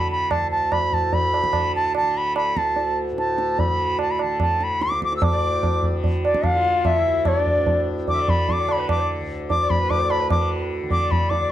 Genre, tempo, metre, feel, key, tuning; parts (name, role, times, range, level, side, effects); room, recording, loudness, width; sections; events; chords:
indian classical, Hindustani; 147 BPM; 4/4; straight; D raga shivaranjani; A4 = 440 Hz
bright reedy bansuri; melody; 0.0-11.5 s; D5 to E6; -22 LUFS; equal; slapback echo
tanpura; drone; 0.0-11.5 s; D2 to D3; -28 LUFS; equal
tabla; percussion; 0.3-11.5 s; -23 LUFS; right 2 dB
clear sarangi; second line; 5.3-11.5 s; D4 to E5; -29 LUFS; left 7 dB
studio reverb; dry, close 1970s-style studio recording; -19 LUFS; side -12 dB against mid
0.0-11.5 A section